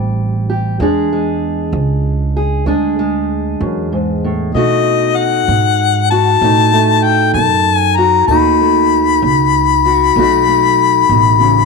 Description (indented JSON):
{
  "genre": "acoustic country blues, solo or duo",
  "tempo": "64 BPM (dotted quarters)",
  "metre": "12/8",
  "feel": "straight",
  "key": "unclear",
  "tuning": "A4 = 439 Hz",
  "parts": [
    { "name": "fingerpicked steel-string acoustic guitar", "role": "accompaniment", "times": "0.0-11.7 s", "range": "E2 to G#4", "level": "-15 LUFS", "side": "right 2 dB", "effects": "none" },
    { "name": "upright bass", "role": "bass", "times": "0.0-11.7 s", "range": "A1 to B2", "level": "-17 LUFS", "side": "right 2 dB", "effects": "none" },
    { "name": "warm harmonica", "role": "melody", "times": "4.5-11.7 s", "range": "D#5 to B5", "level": "-12 LUFS", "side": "left 10 dB", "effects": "none" }
  ],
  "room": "light reverb, studio reverb",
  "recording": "none",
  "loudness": "-11 LUFS",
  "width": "side -4 dB against mid",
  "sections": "0.0-11.7 A section",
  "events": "none",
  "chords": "0.0 Am7; 0.8 E7; 4.5 B7",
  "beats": "| 0.80 1.74 2.67 3.61 | 4.54 5.48 6.41 7.35 | 8.28 9.22 10.15 11.08"
}